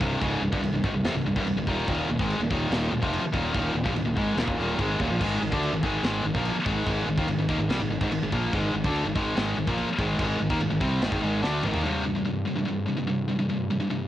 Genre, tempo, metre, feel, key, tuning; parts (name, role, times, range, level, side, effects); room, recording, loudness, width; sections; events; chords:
heavy metal; 144 BPM; 4/4; straight; C minor; A4 = 440 Hz
high-gain distorted guitar; riff; 0.0-14.1 s; C2 to D4; -27 LUFS; left 3 dB; distortion, cassette tape
high-gain distorted guitar; riff; 0.0-14.1 s; C2 to D4; -31 LUFS; right 7 dB; distortion, cassette tape
fuzz fingered electric bass; bass; 0.0-11.8 s; C1 to Eb2; -30 LUFS; equal; overdrive
modern studio drum kit; drums; 0.0-11.8 s; china cymbal, crash cymbal, kick drum, snare drum, toms; -32 LUFS; equal; cassette tape
light reverb, small room ambience; home recording on cassette; -24 LUFS; side -13 dB against mid
0.0-11.8 A section; 11.8-14.1 B section
drum fill 11.4-11.8
0.0 Cm; 1.9 Eb5; 5.2 Ab5; 11.8 C5